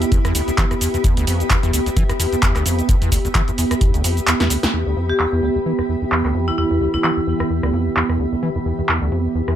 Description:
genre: acid house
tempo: 130 BPM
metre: 4/4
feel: swing 56% on 16ths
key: E phrygian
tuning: A4 = 440 Hz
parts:
  - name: deep acid bass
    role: riff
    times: 0.0-9.6 s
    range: D2 to E3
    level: -21 LUFS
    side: equal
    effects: overdrive, wide subtle chorus
  - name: punchy analog drum machine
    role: drums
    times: 0.0-9.6 s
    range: handclaps, hi-hat, rim click, shaker, snare drum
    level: -21 LUFS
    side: equal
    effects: low-pass filter on hats, low-pass filter on snare, low-pass filter on perc, low-pass filter on room
  - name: granular cloud pad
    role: texture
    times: 0.0-9.6 s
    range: B3 to B5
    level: -23 LUFS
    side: equal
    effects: built-in reverb, sidechain pumping
  - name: electronic kick drum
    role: drums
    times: 0.1-3.9 s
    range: none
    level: -18 LUFS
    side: equal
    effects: none
  - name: dark analog pad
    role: sustained chords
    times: 5.5-9.6 s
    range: E3 to G4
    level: -26 LUFS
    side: right 3 dB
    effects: chorus, phaser, sidechain pumping
  - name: marimba with hard mallets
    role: melody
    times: 5.1-7.1 s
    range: E4 to G4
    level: -25 LUFS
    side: right 1 dB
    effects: dub echo
room: moderate studio ambience, RT60 0.5 s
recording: none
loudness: -16 LUFS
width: side -10 dB against mid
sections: 0.0-4.7 A section; 4.7-9.6 B section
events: kick drops out 4.3-4.7; drum fill 4.4-4.7; band accent 4.6; filter sweep on acid bass 4.7-9.6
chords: 0.0 Em

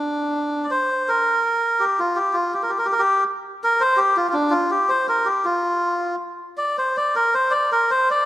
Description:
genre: chinese traditional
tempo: 81 BPM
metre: 2/4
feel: rubato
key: D jue mode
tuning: A4 = 440 Hz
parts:
  - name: melodica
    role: solo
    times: 0.0-8.3 s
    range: D4 to D5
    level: -18 LUFS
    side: equal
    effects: none
room: wet scoring stage reverb, RT60 1.8 s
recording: dark, warm production, lossy compression artefacts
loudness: -18 LUFS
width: side -14 dB against mid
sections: 0.0-1.1 A section; 1.1-8.3 B section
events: none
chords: none

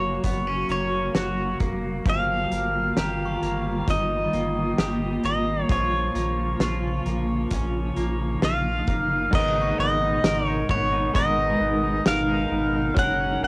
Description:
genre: dream pop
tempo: 66 BPM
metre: 4/4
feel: straight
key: G# dorian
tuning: A4 = 440 Hz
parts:
  - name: pedal steel guitar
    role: melody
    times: 0.0-13.5 s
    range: C#5 to F#5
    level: -28 LUFS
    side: equal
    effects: cassette tape, tape echo
  - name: granular cloud pad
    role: sustained chords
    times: 0.0-13.5 s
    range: B2 to A#4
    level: -31 LUFS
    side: equal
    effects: built-in reverb, cassette tape
  - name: twangy electric guitar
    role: arpeggios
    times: 0.0-13.5 s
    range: E#3 to A#4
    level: -35 LUFS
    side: equal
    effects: lush chorus, cassette tape, tape echo
  - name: round analog bass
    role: bass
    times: 0.0-13.5 s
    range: E#1 to A#1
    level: -32 LUFS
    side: equal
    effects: none
  - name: loose indie drum kit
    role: drums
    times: 0.2-13.2 s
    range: crash cymbal, hi-hat, kick drum, snare drum, tambourine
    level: -29 LUFS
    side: equal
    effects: cassette tape
  - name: synth chime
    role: texture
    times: 3.0-11.5 s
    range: A#5 to D#6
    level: -42 LUFS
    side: equal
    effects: ensemble chorus, tremolo, cassette tape, tape echo, plate reverb
  - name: direct-recorded clean electric guitar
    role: accompaniment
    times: 9.3-13.5 s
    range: G#2 to A#4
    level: -34 LUFS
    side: equal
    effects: tremolo, subtle chorus, cassette tape
room: wet booth ambience, RT60 0.2 s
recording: home recording on cassette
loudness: -24 LUFS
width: mono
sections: 0.0-9.3 A section; 9.3-13.5 B section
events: none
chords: 0.0 F#; 2.1 D#add9/G; 5.7 A#m; 9.3 G#madd9; 13.0 F#add9

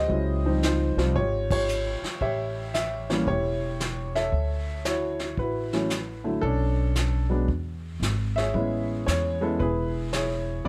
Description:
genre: jazz piano trio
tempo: 114 BPM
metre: 4/4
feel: swing 67% on 8ths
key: A major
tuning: A4 = 440 Hz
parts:
  - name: warm grand piano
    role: melody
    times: 0.0-10.7 s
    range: D3 to E5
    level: -29 LUFS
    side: equal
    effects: none
  - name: upright bass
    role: bass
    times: 0.0-10.7 s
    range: E1 to E2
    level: -30 LUFS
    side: equal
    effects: none
  - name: vintage brush drum kit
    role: drums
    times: 0.1-10.7 s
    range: brushed snare drum, hi-hat, kick drum, ride cymbal, snare drum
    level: -36 LUFS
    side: equal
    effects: none
room: light reverb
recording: none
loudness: -27 LUFS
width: mono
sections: 0.0-10.7 A section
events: band accent 1.4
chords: 0.1 C#maj9#11; 2.2 A7; 4.3 Dmaj9; 6.4 Bm9; 7.5 E; 8.5 Amaj9

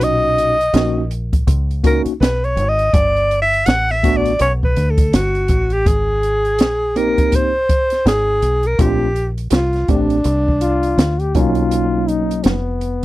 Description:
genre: hip hop, jazz-hop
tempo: 82 BPM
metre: 4/4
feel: swing 59% on 16ths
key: unclear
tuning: A4 = 440 Hz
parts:
  - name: breathy alto saxophone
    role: melody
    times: 0.0-11.4 s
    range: D4 to F#5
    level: -17 LUFS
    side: equal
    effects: none
  - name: tine electric piano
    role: accompaniment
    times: 0.0-12.5 s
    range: A#2 to G4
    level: -19 LUFS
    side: equal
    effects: overdrive, medium stereo tremolo
  - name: deep dub fingered electric bass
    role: bass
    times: 0.0-13.0 s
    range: F1 to D2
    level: -20 LUFS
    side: equal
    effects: none
  - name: open jazz drum kit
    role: drums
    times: 0.0-13.0 s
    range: hi-hat, kick drum, snare drum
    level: -17 LUFS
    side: equal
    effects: none
  - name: mellow trombone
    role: second line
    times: 10.6-13.0 s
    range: B3 to G4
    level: -21 LUFS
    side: left 4 dB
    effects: none
room: little or no reverb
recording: dry, close 1970s-style studio recording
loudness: -14 LUFS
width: side -17 dB against mid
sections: 0.0-5.9 A section; 5.9-13.0 B section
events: alto saxophone solo 0.0-5.9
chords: 0.0 Bmaj9; 2.9 Gmaj9; 5.9 Abmaj9; 8.8 Bbmaj9; 11.4 Bmaj9

